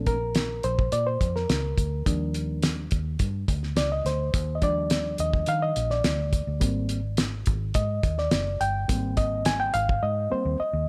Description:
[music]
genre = uptempo 1960s-style soul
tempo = 105 BPM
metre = 4/4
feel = straight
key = unclear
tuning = A4 = 441 Hz
[part]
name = reed electric piano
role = accompaniment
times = 0.0-10.9 s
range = F3 to Ab5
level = -30 LUFS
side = equal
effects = none
[part]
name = vintage muted fingered electric bass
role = bass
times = 0.0-10.9 s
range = Gb1 to Eb3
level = -31 LUFS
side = equal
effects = none
[part]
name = cloth-damped thuddy drum kit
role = drums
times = 0.1-10.0 s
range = hi-hat, kick drum, snare drum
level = -28 LUFS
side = equal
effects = none
[sound]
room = light reverb, studio ambience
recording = none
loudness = -26 LUFS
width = mono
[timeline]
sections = 0.0-10.9 A section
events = reed electric piano solo 0.0-10.9; drum fill 10.0-10.9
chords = 0.0 Bb; 2.1 Ebmaj7; 6.6 Abmaj7

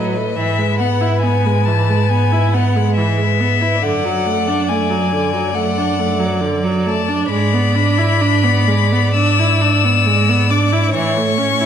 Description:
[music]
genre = classical, slow romantic movement for string quartet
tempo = 68 BPM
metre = 4/4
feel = rubato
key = unclear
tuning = A4 = 439 Hz
[part]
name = rich violin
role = melody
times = 0.0-11.7 s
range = D#5 to E6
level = -19 LUFS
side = left 10 dB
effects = none
[part]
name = rich violin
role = second line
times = 0.0-11.7 s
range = B4 to D5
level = -23 LUFS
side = left 4 dB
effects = none
[part]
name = rich viola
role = accompaniment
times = 0.0-11.7 s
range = D3 to E4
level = -19 LUFS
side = right 2 dB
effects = none
[part]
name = clear cello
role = bass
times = 0.0-11.7 s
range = F#2 to A2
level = -18 LUFS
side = right 2 dB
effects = none
[sound]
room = wet recital hall reverb, RT60 1.4 s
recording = none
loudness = -13 LUFS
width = side -8 dB against mid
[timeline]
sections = 0.0-11.7 A section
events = none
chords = 0.4 E/G#; 3.8 D/F#; 7.3 E7/G#; 10.9 A

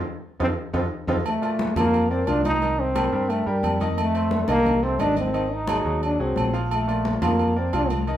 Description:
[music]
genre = latin, salsa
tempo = 176 BPM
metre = 4/4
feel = straight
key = Bb major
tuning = A4 = 441 Hz
[part]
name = breathy trombone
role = melody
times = 0.4-7.9 s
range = G3 to Eb4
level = -24 LUFS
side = equal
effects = none
[part]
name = bright concert grand piano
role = accompaniment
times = 0.4-8.2 s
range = Bb2 to F5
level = -29 LUFS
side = equal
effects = none
[part]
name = fingered electric bass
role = bass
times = 0.4-8.2 s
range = Ab1 to G2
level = -27 LUFS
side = equal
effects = none
[part]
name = congas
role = percussion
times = 0.4-8.2 s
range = none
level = -30 LUFS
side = left 2 dB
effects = none
[part]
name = timbales and agogo bells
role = percussion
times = 0.4-8.2 s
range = none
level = -30 LUFS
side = right 1 dB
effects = none
[sound]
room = wet studio reverb, RT60 0.6 s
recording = band playing live in one room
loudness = -20 LUFS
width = side -11 dB against mid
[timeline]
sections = 0.0-1.3 A section; 1.3-8.2 B section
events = band accent 0.0-1.3; drum fill 0.2-1.3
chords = 0.0 F7; 1.3 Bb; 2.6 Cm7; 4.0 F7; 5.3 Ab7; 6.7 Bb

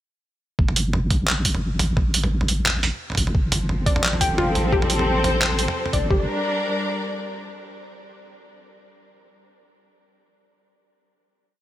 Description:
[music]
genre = half-time drum and bass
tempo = 174 BPM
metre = 4/4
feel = swing 56% on 16ths, half-time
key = G minor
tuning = A4 = 441 Hz
[part]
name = deep soft wobble bass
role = bass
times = 0.6-6.3 s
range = G1 to A1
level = -23 LUFS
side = equal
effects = chorus, tube saturation
[part]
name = electronic kick drum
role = drums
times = 0.6-6.2 s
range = none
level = -22 LUFS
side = equal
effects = small room ambience
[part]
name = boom bap sampler-style drum kit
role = drums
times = 0.7-6.0 s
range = handclaps, hi-hat, toms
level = -24 LUFS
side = right 2 dB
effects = small room ambience
[part]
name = warm symphonic string section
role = sustained chords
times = 3.3-7.4 s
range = F3 to D5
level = -25 LUFS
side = left 1 dB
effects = sidechain pumping
[part]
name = warbly dusty pluck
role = arpeggios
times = 3.9-6.3 s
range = F4 to G5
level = -27 LUFS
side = left 3 dB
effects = chorus, dub echo
[sound]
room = light reverb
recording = none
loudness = -19 LUFS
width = side -13 dB against mid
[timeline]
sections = 0.6-6.1 drop; 6.1-7.5 final chord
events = drop 0.6-6.1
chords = 0.6 Gsus2; 3.3 F/G; 6.1 Gm

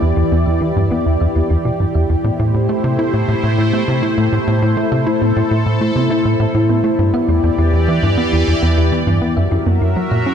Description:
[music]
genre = ambient, sequencer-driven space music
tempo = 101 BPM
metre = 4/4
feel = straight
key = E minor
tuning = A4 = 441 Hz
[part]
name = sweeping resonant pad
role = sustained chords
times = 0.0-10.3 s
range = E3 to E5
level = -18 LUFS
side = equal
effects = chorus
[part]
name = thumb-piano-like synth pluck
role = arpeggios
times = 0.0-10.3 s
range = A#3 to E5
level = -25 LUFS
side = right 1 dB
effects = chorus, auto-pan, tape echo
[part]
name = tight sequencer bass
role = riff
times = 0.0-10.3 s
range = E2 to E4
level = -15 LUFS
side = equal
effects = tape echo
[sound]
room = wet lush hall reverb, RT60 3.0 s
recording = dreamy mix soaked in reverb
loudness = -13 LUFS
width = side -8 dB against mid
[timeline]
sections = 0.0-10.3 A section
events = fade-in on synth arpeggio sound 0.0-10.3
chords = 0.0 Em7; 2.2 Am7; 7.0 Em7; 9.4 F#7

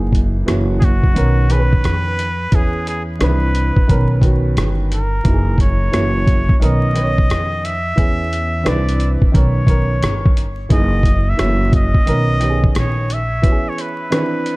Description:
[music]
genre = hip hop, jazz-hop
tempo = 88 BPM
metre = 4/4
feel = swing 66% on 16ths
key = B major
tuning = A4 = 440 Hz
[part]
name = warm upright piano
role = accompaniment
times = 0.0-14.6 s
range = D#3 to C#5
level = -21 LUFS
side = right 1 dB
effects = none
[part]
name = upright bass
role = bass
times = 0.0-13.4 s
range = F#1 to E#2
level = -18 LUFS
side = equal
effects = none
[part]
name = lo-fi sampler-style drum kit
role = drums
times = 0.1-14.6 s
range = hi-hat, kick drum, rim click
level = -15 LUFS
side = equal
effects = none
[part]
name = trumpet with straight mute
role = melody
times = 0.8-14.6 s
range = F#4 to E5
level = -23 LUFS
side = equal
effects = tape echo
[sound]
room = small room reverb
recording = dark, warm production, vinyl crackle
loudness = -13 LUFS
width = side -22 dB against mid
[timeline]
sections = 0.0-14.6 A section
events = none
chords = 0.5 F#7; 1.2 Bmaj9; 2.5 E6; 3.2 Cmaj9; 3.9 Bmaj9; 5.2 F#13; 5.9 F#7; 6.6 Bmaj9; 8.0 E6; 8.7 Cmaj9; 9.3 Bmaj9; 10.7 F#13; 11.4 F#7; 12.1 Bmaj9; 13.4 E6

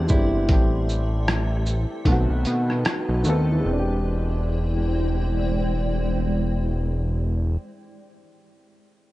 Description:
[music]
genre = lo-fi hip hop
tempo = 76 BPM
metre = 4/4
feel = swing 57% on 16ths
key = E minor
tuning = A4 = 438 Hz
[part]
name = flamenco guitar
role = melody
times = 0.0-1.6 s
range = E4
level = -30 LUFS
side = right 1 dB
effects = low-pass filter
[part]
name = warm upright piano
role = accompaniment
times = 0.0-9.1 s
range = D#3 to A4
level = -28 LUFS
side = equal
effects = cassette tape, low-pass filter
[part]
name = granular cloud pad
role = sustained chords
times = 0.0-7.6 s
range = G#3 to C6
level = -31 LUFS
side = equal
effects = built-in reverb, low-pass filter
[part]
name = fat analog bass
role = bass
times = 0.0-7.6 s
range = E1 to B2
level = -23 LUFS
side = equal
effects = none
[part]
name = lo-fi sampler-style drum kit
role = drums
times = 0.1-3.5 s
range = hi-hat, kick drum, rim click, shaker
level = -22 LUFS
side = equal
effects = overdrive
[sound]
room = light reverb, digital ambience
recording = dark, warm production, nothing above 10.8 kHz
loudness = -20 LUFS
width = side -17 dB against mid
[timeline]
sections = 0.0-3.6 A section; 3.6-6.8 B section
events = none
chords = 0.5 Am7; 2.1 B7b9; 3.6 E7alt

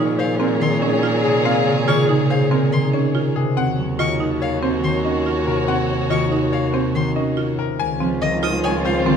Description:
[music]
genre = classical, minimalist pattern music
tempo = 142 BPM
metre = 5/4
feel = straight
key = unclear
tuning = A4 = 442 Hz
[part]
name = bright concert grand piano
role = melody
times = 0.0-9.1 s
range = Ab4 to Ab5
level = -26 LUFS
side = left 8 dB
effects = none
[part]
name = clear clarinet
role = second line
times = 0.0-9.2 s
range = F4 to Ab4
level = -26 LUFS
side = right 1 dB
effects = none
[part]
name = concert harp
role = accompaniment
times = 0.0-9.2 s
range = C3 to C4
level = -21 LUFS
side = left 1 dB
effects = none
[part]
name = dark symphonic violin section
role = sustained chords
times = 0.0-9.2 s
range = C4 to Db5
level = -27 LUFS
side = left 3 dB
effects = none
[part]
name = buzzing marimba with medium hard mallets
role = arpeggios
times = 0.0-9.2 s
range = C4 to F4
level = -25 LUFS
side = right 6 dB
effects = none
[part]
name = rich cello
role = bass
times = 0.0-9.2 s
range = Db2 to Bb2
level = -25 LUFS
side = right 3 dB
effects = none
[part]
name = rich violin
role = arpeggios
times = 0.2-9.0 s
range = Eb5 to Eb6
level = -28 LUFS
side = left 3 dB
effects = none
[sound]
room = wet recital hall reverb, RT60 1.6 s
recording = none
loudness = -17 LUFS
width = side -7 dB against mid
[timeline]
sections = 0.0-7.8 A section; 7.8-9.2 B section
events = none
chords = 0.0 Bbm9; 3.6 Ebm9; 7.8 Dbmaj7

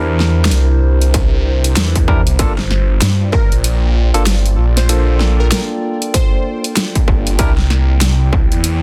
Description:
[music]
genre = glitch hop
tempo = 96 BPM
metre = 4/4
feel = swing 60% on 16ths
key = G dorian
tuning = A4 = 440 Hz
[part]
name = barky tine electric piano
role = stabs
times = 0.0-7.5 s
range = Bb3 to Bb4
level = -25 LUFS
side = equal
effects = sidechain pumping, tape echo
[part]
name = phased detuned saw bass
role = bass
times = 0.0-8.8 s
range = G1 to G2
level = -16 LUFS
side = equal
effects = phaser, tube saturation
[part]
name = warbly tape-like pad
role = texture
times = 0.0-8.8 s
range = Bb3 to G5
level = -29 LUFS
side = equal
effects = chorus, built-in reverb, sidechain pumping
[part]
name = dubstep drum kit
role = drums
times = 0.2-8.8 s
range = hi-hat, snare drum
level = -21 LUFS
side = equal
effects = studio reverb
[part]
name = electronic kick drum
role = drums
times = 1.1-8.5 s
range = none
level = -17 LUFS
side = equal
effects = distortion, studio reverb
[part]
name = plucky unison lead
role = melody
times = 3.3-6.6 s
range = Bb4 to C5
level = -28 LUFS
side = equal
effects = tape echo
[sound]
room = little or no reverb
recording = dense, heavily limited modern master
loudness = -14 LUFS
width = mono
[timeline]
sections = 0.0-8.8 A section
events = none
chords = 0.0 C7; 2.4 Gm7; 7.4 C7

